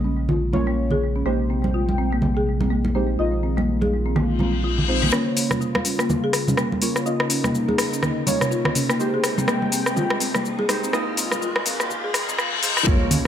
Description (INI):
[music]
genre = afro house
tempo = 124 BPM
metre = 4/4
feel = swing 59% on 16ths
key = Bb dorian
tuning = A4 = 440 Hz
[part]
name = warm analog pad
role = sustained chords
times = 0.0-13.3 s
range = Bb2 to G5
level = -29 LUFS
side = left 1 dB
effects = chorus, sidechain pumping
[part]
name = folk marimba with medium mallets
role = arpeggios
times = 0.0-13.2 s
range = Bb3 to Ab4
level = -25 LUFS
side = left 1 dB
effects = sidechain pumping, digital delay
[part]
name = deep mellow chord stab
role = stabs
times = 0.0-13.3 s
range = Ab3 to Eb5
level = -29 LUFS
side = right 3 dB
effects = chorus, sidechain pumping, digital delay
[part]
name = warm sub bass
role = bass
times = 0.0-5.1, 12.9-13.0 s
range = Bb1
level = -24 LUFS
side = equal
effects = sidechain pumping
[part]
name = congas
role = percussion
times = 0.3-13.2 s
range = none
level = -27 LUFS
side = right 2 dB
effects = none
[part]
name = reverse cymbal, riser and impact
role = sound effects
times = 4.4-13.3 s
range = none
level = -28 LUFS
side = left 4 dB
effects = none
[part]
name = afro-pop drum kit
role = drums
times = 5.1-13.2 s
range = cabasa, hi-hat, rim click, toms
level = -23 LUFS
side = left 1 dB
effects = none
[part]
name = electronic kick drum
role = drums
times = 12.9-13.0 s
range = none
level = -20 LUFS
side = equal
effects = overdrive
[sound]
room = light reverb, digital ambience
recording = high-pass filter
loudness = -19 LUFS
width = side -9 dB against mid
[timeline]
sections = 0.0-5.1 A section; 5.1-12.9 B section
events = filter sweep on analog synth pad 0.0-5.1; reverse cymbal 4.4-5.1, 11.9-12.9; build-up 5.1-12.9; riser 5.1-12.9; filter sweep 5.1-12.9; impact 12.9-13.3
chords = 0.0 Bbm; 1.3 Abmaj7/Bb; 3.2 Fm7/Bb; 5.1 Bbm; 9.0 Abmaj7; 10.9 Fm7/Bb